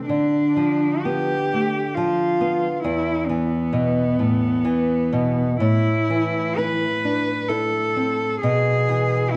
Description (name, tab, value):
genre	romantic duo for cello and classical guitar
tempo	65 BPM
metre	3/4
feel	uneven beats, rubato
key	A minor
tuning	A4 = 441 Hz
part	rich cello	melody	0.0-9.4 s	B3 to B4	-24 LUFS	equal	slapback echo
part	nylon-string guitar	accompaniment	0.0-9.4 s	E2 to E4	-24 LUFS	equal	none
room	moderate recital hall reverb, RT60 1.5 s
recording	dark, warm production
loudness	-21 LUFS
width	mono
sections	0.0-9.4 A section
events	none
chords	0.1 Bdim/D; 2.8 E5; 5.6 Am; 8.4 E/B